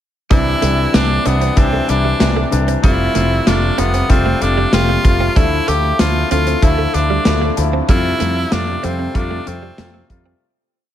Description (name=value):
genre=1980s-style pop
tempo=95 BPM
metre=4/4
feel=straight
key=unclear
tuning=A4 = 442 Hz
part: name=edgy tenor saxophone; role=melody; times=0.3-10.1 s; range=B3 to G4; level=-20 LUFS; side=right 1 dB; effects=tape echo
part: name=clear concert grand piano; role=accompaniment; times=0.3-10.4 s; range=C3 to G4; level=-19 LUFS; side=left 4 dB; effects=none
part: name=direct-recorded clean electric guitar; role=riff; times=0.3-10.4 s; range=G3 to C4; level=-26 LUFS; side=right 8 dB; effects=analog chorus
part: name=mellow fretless electric bass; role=bass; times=0.3-10.3 s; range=F1 to F2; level=-18 LUFS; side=equal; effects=ensemble chorus
part: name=modern studio drum kit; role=drums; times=0.3-10.2 s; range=hi-hat, kick drum, snare drum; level=-16 LUFS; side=equal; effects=gated reverb
room=light reverb, small room ambience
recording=none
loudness=-13 LUFS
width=side -11 dB against mid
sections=0.3-10.4 verse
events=fade-out 7.9-10.4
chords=0.3 Cadd9; 2.8 Fadd9; 5.4 Dmadd9; 7.9 Fadd9